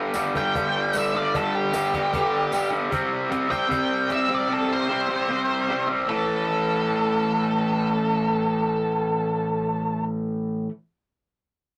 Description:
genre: garage rock duo or trio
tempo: 151 BPM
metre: 4/4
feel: straight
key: A minor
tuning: A4 = 441 Hz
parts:
  - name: raw garage guitar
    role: riff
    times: 0.0-10.7 s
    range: G2 to C4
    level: -26 LUFS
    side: equal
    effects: overdrive
  - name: tambourine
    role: percussion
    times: 0.1-2.6 s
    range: none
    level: -42 LUFS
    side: equal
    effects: none
  - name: cajon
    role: drums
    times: 0.2-4.2 s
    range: none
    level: -36 LUFS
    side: equal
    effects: none
  - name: octave-fuzz lead guitar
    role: melody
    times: 0.4-10.0 s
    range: G4 to G5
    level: -28 LUFS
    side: equal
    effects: distortion
room: moderate booth ambience, RT60 0.2 s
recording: rough rehearsal-room recording, tube saturation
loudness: -24 LUFS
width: mono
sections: 0.0-6.1 A section; 6.1-9.3 B section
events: kick and snare drop out 4.5-6.1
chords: 0.0 G5; 2.9 C5; 6.1 A5

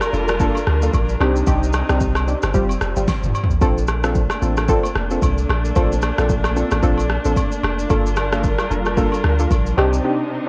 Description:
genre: afrobeats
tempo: 112 BPM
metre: 4/4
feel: swing 58% on 16ths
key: Bb major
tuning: A4 = 439 Hz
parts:
  - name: warm studio string section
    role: sustained chords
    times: 0.0-10.5 s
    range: C3 to Bb4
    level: -28 LUFS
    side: equal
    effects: none
  - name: deep house drum kit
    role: drums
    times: 0.0-10.0 s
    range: kick drum, rim click, shaker, snare drum, toms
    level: -24 LUFS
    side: equal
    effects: none
  - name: agogo bells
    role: percussion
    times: 0.0-9.9 s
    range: none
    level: -32 LUFS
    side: equal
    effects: none
  - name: warm analog keys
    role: accompaniment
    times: 0.1-10.5 s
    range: G3 to A4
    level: -25 LUFS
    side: equal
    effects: chorus
  - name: punchy sub bass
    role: bass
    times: 0.1-10.0 s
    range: F1 to D2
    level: -23 LUFS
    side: equal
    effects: none
room: digital ambience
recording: worn, warbling old tape, cassette tape, warbly pitch drift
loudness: -19 LUFS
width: mono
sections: 0.0-3.6 A section; 3.6-10.5 B section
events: drum fill 3.1-3.6; break 10.0-10.5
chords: 0.0 Gm7; 1.2 Cmadd9; 2.5 Fsus2; 3.6 Bbmaj7; 7.9 Gm7; 9.8 Cmadd9

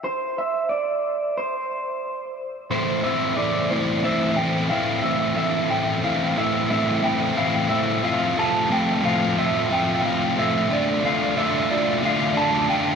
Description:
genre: rock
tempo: 90 BPM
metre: 4/4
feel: straight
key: A minor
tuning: A4 = 440 Hz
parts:
  - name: electric guitar through a small old amp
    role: melody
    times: 0.0-13.0 s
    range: C5 to A5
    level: -23 LUFS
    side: right 1 dB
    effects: ping-pong delay
  - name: sludgy distorted guitar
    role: riff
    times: 2.7-13.0 s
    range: A2 to F4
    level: -21 LUFS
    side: left 1 dB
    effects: overdrive
room: wet huge ambient reverb, RT60 4.7 s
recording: dreamy mix soaked in reverb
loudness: -20 LUFS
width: side -6 dB against mid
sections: 0.0-2.7 A section; 2.7-13.0 B section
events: build-up 2.7-13.0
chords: 0.0 N.C.; 2.7 Am; 8.0 F/A; 10.7 Dm

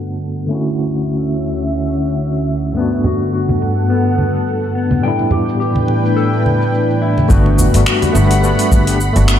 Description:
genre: sunset chillout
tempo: 106 BPM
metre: 4/4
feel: swing 57% on 16ths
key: unclear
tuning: A4 = 442 Hz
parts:
  - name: overdriven tine electric piano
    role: accompaniment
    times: 0.0-9.4 s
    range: G2 to G4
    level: -19 LUFS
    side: equal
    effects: fast tremolo, auto-pan, tape echo
  - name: lush unison pad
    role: sustained chords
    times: 0.0-9.4 s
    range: D2 to B5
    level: -18 LUFS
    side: equal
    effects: chorus
  - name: deep house drum kit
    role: drums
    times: 0.1-9.4 s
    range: finger snaps, hi-hat, shaker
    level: -20 LUFS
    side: left 1 dB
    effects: overdrive, low-pass filter on perc, low-pass filter on hats, low-pass filter on snare, low-pass filter on room
  - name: mellow electric guitar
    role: arpeggios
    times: 2.8-9.4 s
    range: B3 to G5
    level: -22 LUFS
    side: left 6 dB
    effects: tape echo
  - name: congas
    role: percussion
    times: 2.9-8.8 s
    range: none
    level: -20 LUFS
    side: right 1 dB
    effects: none
  - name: upright bass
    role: bass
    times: 7.3-9.4 s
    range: G1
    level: -13 LUFS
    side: equal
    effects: none
  - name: electronic kick drum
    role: drums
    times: 7.3-8.8 s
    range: none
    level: -13 LUFS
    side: equal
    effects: overdrive
room: light reverb, digital ambience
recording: low-pass filter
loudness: -13 LUFS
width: side -10 dB against mid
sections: 0.0-7.3 A section; 7.3-9.4 B section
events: filter sweep on analog synth pad 0.0-7.3; filter sweep 0.0-7.3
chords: 0.0 Gmaj7; 0.5 Dmaj7; 2.8 Gmaj7; 5.0 A7sus4; 7.3 Gmaj7

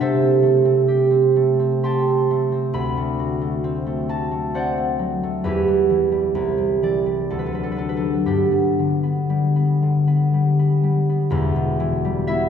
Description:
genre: classical, solo harp piece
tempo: 58-69 BPM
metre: 3/4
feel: rubato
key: G major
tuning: A4 = 441 Hz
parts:
  - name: concert harp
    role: solo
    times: 0.0-12.5 s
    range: E1 to C6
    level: -17 LUFS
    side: right 1 dB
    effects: none
room: wet recital hall reverb, RT60 1.6 s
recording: recorded in a church or concert hall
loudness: -17 LUFS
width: side -7 dB against mid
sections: 0.0-11.3 A section; 11.3-12.5 B section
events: none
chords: 0.0 Am7/C; 2.8 D7; 5.4 Em; 6.3 Cmaj9; 7.3 D; 8.3 G; 11.3 Em

